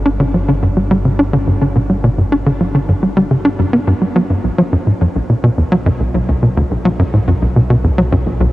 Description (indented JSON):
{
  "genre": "ambient, sequencer-driven space music",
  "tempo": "106 BPM",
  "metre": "4/4",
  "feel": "straight",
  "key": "unclear",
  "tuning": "A4 = 440 Hz",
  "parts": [
    { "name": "analog drone", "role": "bass", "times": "0.0-8.5 s", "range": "G1 to B1", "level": "-21 LUFS", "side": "equal", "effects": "chorus" },
    { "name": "tight sequencer bass", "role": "riff", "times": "0.1-8.5 s", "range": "B1 to D4", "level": "-12 LUFS", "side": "equal", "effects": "analog chorus, analog delay" }
  ],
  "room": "moderate huge ambient reverb, RT60 9.2 s",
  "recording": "worn, warbling old tape, cassette tape, warbly pitch drift",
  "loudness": "-12 LUFS",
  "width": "side -17 dB against mid",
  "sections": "0.0-8.5 A section",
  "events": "none",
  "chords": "none",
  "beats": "0.48 1.05 1.61 | 2.18 2.75 3.31 3.88 | 4.44 5.01 5.58 6.14 | 6.71 7.27 7.84 8.40"
}